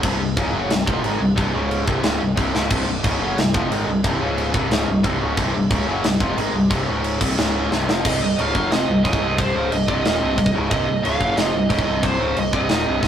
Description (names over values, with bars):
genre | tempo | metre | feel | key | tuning
heavy metal | 180 BPM | 4/4 | straight | unclear | A4 = 441 Hz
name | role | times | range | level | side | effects
tight distorted guitar | riff | 0.0-13.1 s | C2 to Ab3 | -21 LUFS | left 1 dB | distortion
growling picked electric bass | bass | 0.0-13.1 s | C1 to Ab1 | -27 LUFS | equal | overdrive
tight metal drum kit | drums | 0.0-13.1 s | crash cymbal, kick drum, snare drum | -22 LUFS | equal | none
high-gain lead guitar | melody | 8.1-13.1 s | C5 to F5 | -23 LUFS | right 4 dB | distortion
room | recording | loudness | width
moderate small room reverb, RT60 0.5 s | rough rehearsal-room recording | -17 LUFS | side -9 dB against mid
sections
0.0-8.1 A section; 8.1-13.1 B section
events
drum fill 2.5, 7.7-8.1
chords
0.0 C5; 1.5 Db5; 1.9 C5; 4.2 Db5; 4.6 C5; 6.9 Db5; 7.2 C5; 7.4 Db5; 7.7 C5; 8.1 Cm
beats
| 0.03 0.37 0.70 1.04 | 1.37 1.71 2.04 2.38 | 2.71 3.05 3.38 3.71 | 4.05 4.38 4.72 5.05 | 5.39 5.72 6.05 6.39 | 6.72 7.05 7.38 7.72 | 8.05 8.38 8.72 9.05 | 9.38 9.71 10.05 10.38 | 10.71 11.04 11.38 11.71 | 12.04 12.38 12.71 13.04